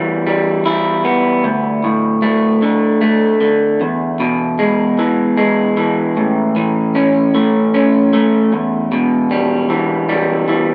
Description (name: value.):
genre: rock.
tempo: 51 BPM (dotted quarters).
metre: 6/8.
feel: straight.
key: unclear.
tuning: A4 = 440 Hz.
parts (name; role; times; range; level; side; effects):
electric guitar through a small old amp; solo; 0.0-10.7 s; D2 to E4; -15 LUFS; equal; analog delay.
room: wet recital hall reverb, RT60 1.8 s.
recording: none.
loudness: -15 LUFS.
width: mono.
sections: 0.0-1.4 A section; 1.4-10.7 B section.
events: build-up 0.0-1.4.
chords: 0.0 Em; 1.4 D5; 3.8 E; 6.2 A; 8.5 Em.